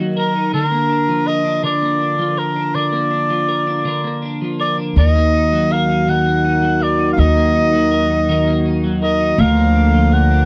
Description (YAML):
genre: pop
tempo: 54 BPM (dotted quarters)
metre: 6/8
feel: straight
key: Eb harmonic minor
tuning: A4 = 442 Hz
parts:
  - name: twelve-string electric guitar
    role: accompaniment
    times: 0.0-10.5 s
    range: D3 to Bb4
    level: -21 LUFS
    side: equal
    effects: double-tracked
  - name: clear oboe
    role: melody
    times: 0.2-10.5 s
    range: Bb4 to Gb5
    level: -20 LUFS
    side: equal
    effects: none
  - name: warm analog pad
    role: sustained chords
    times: 5.0-10.5 s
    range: D3 to Bb5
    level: -24 LUFS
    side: equal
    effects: chorus
  - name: upright bass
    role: bass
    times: 5.0-10.5 s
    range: D2 to Eb2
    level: -19 LUFS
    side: equal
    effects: none
room: little or no reverb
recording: dry, close 1970s-style studio recording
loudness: -16 LUFS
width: mono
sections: 0.0-10.5 A section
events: none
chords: 0.0 Ebm; 0.5 Bb/D; 5.0 Ebm; 9.4 Bb/D